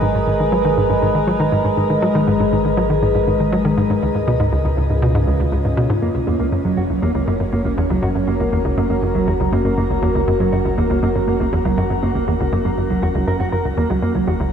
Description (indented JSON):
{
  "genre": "ambient, sequencer-driven space music",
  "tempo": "120 BPM",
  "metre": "4/4",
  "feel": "straight",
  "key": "unclear",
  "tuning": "A4 = 440 Hz",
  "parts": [
    { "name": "evolving wavetable pad", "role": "sustained chords", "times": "0.0-14.5 s", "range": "Db3 to Eb5", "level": "-19 LUFS", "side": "equal", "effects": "chorus, built-in reverb, shimmer reverb" },
    { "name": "hollow square pluck", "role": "riff", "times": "0.0-14.5 s", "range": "Db2 to Gb3", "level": "-19 LUFS", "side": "equal", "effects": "chorus, cassette tape, tape echo, shimmer reverb" },
    { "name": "warm sub bass", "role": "bass", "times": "0.0-14.5 s", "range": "F#1 to Db2", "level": "-26 LUFS", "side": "equal", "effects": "none" },
    { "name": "mellow electric guitar", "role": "arpeggios", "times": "6.0-14.3 s", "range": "F#3 to A#4", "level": "-22 LUFS", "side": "right 2 dB", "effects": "auto-pan, low-pass filter, tape echo, shimmer reverb" }
  ],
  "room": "wet cathedral reverb, RT60 4.6 s",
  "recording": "in a vast, echoing space, cassette tape",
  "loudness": "-15 LUFS",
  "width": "side -8 dB against mid",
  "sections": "0.0-6.0 A section; 6.0-14.5 B section",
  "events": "none",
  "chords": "0.0 Abmadd9; 4.0 Db7; 6.0 F#"
}